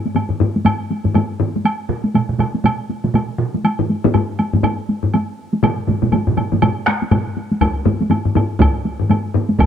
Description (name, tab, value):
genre	japanese traditional, taiko drum ensemble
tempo	121 BPM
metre	4/4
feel	swing 60% on 16ths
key	none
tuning	none
part	taiko ensemble	percussion	0.1-9.7 s	none	-19 LUFS	equal	none
part	taiko ensemble	percussion	0.1-9.5 s	none	-18 LUFS	left 2 dB	none
part	woodblock	percussion	0.2-9.7 s	none	-25 LUFS	right 2 dB	none
part	taiko ensemble	percussion	1.9-7.3 s	none	-21 LUFS	right 4 dB	none
part	taiko ensemble	percussion	7.6-9.7 s	none	-16 LUFS	equal	none
room	light reverb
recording	none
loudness	-15 LUFS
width	side -9 dB against mid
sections	0.0-9.7 A section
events	none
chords	none